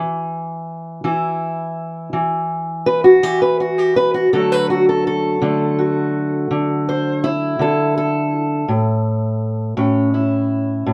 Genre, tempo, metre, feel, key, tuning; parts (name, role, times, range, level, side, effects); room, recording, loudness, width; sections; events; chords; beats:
acoustic country blues, solo or duo; 55 BPM (dotted quarters); 12/8; straight; A4 = 440 Hz
fingerpicked steel-string acoustic guitar; solo; 0.0-10.9 s; A2 to C5; -18 LUFS; equal
wet small room reverb, RT60 0.6 s; dark, warm production; -18 LUFS; mono
0.0-10.9 A section
0.0 N.C.; 4.3 D; 8.7 A
1.04 2.13 3.23 | 4.32 5.41 6.50 7.59 | 8.69 9.78 10.87